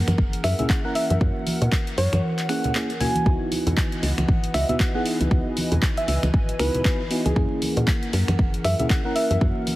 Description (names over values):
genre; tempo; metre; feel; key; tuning
deep house; 117 BPM; 4/4; swing 59% on 16ths; unclear; A4 = 440 Hz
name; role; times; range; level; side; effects
hollow soft pad; sustained chords; 0.0-9.8 s; E3 to G#5; -33 LUFS; equal; chorus, sidechain pumping
mellow FM electric piano; stabs; 0.0-9.8 s; A#3 to A#4; -28 LUFS; equal; chorus, phaser, sidechain pumping, digital delay
woody FM bass; bass; 0.0-9.5 s; F#1 to A#2; -23 LUFS; equal; sidechain pumping
deep house drum kit; drums; 0.1-9.8 s; finger snaps, handclaps, hi-hat; -30 LUFS; equal; none
congas; percussion; 0.1-9.8 s; none; -29 LUFS; right 1 dB; none
electronic kick drum; drums; 0.2-9.5 s; none; -22 LUFS; equal; none
soft struck synth lead; melody; 0.4-9.4 s; G#4 to G#5; -28 LUFS; equal; chorus, digital delay
room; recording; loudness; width
light reverb; heavily compressed radio sound, multiband compression, vinyl crackle; -20 LUFS; side -17 dB against mid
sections
0.0-9.8 A section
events
none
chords
0.0 F#7; 3.3 C#m11; 7.4 F#7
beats
0.18 0.70 | 1.21 1.72 2.23 2.75 | 3.26 3.77 4.29 4.80 | 5.31 5.83 6.34 6.85 | 7.36 7.88 8.39 8.90 | 9.41